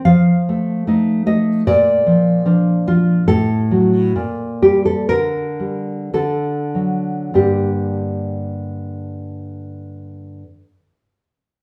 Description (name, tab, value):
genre	romantic piece for solo classical guitar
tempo	46-77 BPM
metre	2/4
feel	rubato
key	G minor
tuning	A4 = 441 Hz
part	nylon-string guitar	solo	0.0-10.4 s	G2 to F5	-17 LUFS	equal	none
room	wet large studio reverb, RT60 0.8 s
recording	band playing live in one room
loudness	-17 LUFS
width	mono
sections	0.0-7.4 A section; 7.4-11.6 B section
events	slowing down 2.5-7.4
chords	0.1 F7; 1.7 Bb; 3.3 F#m/A; 4.2 Gm/Bb; 5.1 Gm/D; 6.1 D; 7.4 Gm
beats	| 0.06 0.88 | 1.67 2.45 | 3.28 4.15 | 5.09 6.13 | 7.36 8.53 | 9.73